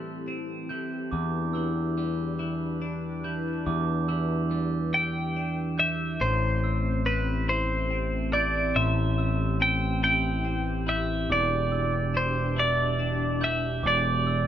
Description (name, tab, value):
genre	rock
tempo	47 BPM (dotted quarters)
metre	6/8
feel	straight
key	A minor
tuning	A4 = 436 Hz
part	sweeping resonant pad	sustained chords	0.0-14.5 s	B2 to B4	-35 LUFS	right 1 dB	chorus
part	twelve-string electric guitar	arpeggios	0.0-14.5 s	E2 to E4	-34 LUFS	left 2 dB	none
part	glockenspiel with soft plastic mallets	arpeggios	0.7-14.5 s	C6 to G6	-36 LUFS	right 8 dB	none
part	growling picked electric bass	bass	1.1-14.5 s	E1 to E2	-28 LUFS	equal	overdrive
part	twelve-string electric guitar	melody	4.9-14.5 s	B4 to G5	-27 LUFS	equal	none
room	moderate small room reverb, RT60 0.6 s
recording	band playing live in one room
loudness	-24 LUFS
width	side -10 dB against mid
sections	0.0-6.2 A section; 6.2-14.5 B section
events	none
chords	0.0 Am7; 1.1 Em7; 6.2 Am7; 11.3 Em7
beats	| 1.13 2.40 | 3.67 4.94 | 6.21 7.49 | 8.76 10.03 | 11.30 12.57 | 13.84